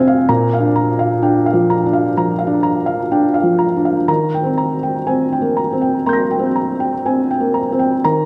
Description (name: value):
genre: neoclassical minimalist piano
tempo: 60-65 BPM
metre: 4/4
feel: rubato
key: unclear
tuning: A4 = 440 Hz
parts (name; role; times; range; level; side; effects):
- felt-muted upright piano; solo; 0.0-8.3 s; Bb2 to Bb6; -16 LUFS; equal; tape echo
room: moderate recital hall reverb, RT60 1.7 s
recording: dark, warm production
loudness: -16 LUFS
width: mono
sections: 0.0-8.0 A section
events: none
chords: 0.3 Bb; 4.1 Eb6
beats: | 0.29 1.22 2.15 3.10 | 4.08 5.08 6.06 7.04 | 8.04